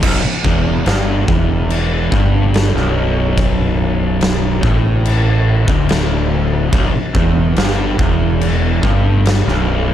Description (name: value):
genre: stoner and doom metal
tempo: 72 BPM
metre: 4/4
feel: straight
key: B minor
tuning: A4 = 440 Hz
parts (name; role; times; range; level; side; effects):
- overdriven semi-hollow guitar; riff; 0.0-9.9 s; B1 to A2; -20 LUFS; equal; none
- thick fuzz guitar; riff; 0.0-9.9 s; B1 to A2; -19 LUFS; equal; distortion
- fuzz fingered electric bass; bass; 0.0-9.9 s; B0 to A1; -18 LUFS; equal; overdrive
- oversized low-tuned drum kit; drums; 0.0-9.6 s; crash cymbal, kick drum, snare drum; -18 LUFS; equal; none
room: studio reverb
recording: dark, warm production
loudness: -12 LUFS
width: side -11 dB against mid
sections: 0.0-9.9 A section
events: none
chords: 0.0 Bm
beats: | 0.04 0.87 1.71 2.54 | 3.38 4.21 5.05 5.89 | 6.72 7.56 8.40 9.25